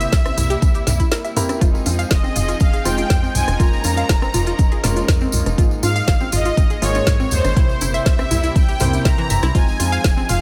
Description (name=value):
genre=progressive house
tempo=121 BPM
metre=4/4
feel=straight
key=F minor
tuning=A4 = 440 Hz
part: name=soft supersaw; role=melody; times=0.0-10.4 s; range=C5 to Bb5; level=-28 LUFS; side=equal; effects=digital delay
part: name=dark symphonic violin section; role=second line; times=0.0-10.4 s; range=C5 to Bb5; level=-33 LUFS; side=equal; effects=none
part: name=warm studio string section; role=sustained chords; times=0.0-10.4 s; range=C3 to Bb4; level=-33 LUFS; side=equal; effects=sidechain pumping
part: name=analog pluck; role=arpeggios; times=0.0-10.4 s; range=E3 to F5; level=-28 LUFS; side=equal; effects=chorus, sidechain pumping, digital delay
part: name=warm grand piano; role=stabs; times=0.0-10.4 s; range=Ab2 to C5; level=-29 LUFS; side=equal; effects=sidechain pumping, digital delay
part: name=tight sequencer bass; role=bass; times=0.0-10.4 s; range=F1 to Ab2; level=-25 LUFS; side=equal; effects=sidechain pumping
part: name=deep house drum kit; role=drums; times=0.0-10.4 s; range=hi-hat, rim click, snare drum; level=-27 LUFS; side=equal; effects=none
part: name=tambourine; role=percussion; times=0.0-10.4 s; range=none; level=-34 LUFS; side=equal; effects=none
part: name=electronic kick drum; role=drums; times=0.1-10.1 s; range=none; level=-18 LUFS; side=equal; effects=none
part: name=electronic congas and toms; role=percussion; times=0.3-10.4 s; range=none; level=-28 LUFS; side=equal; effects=sidechain pumping on perc, sidechain pumping on toms
room=studio ambience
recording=none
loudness=-17 LUFS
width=mono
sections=0.0-10.4 A section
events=break 1.1-1.6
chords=0.0 C7; 1.6 Fm7; 3.6 Db6/F; 5.6 Absus2; 7.6 C7; 9.5 Fm7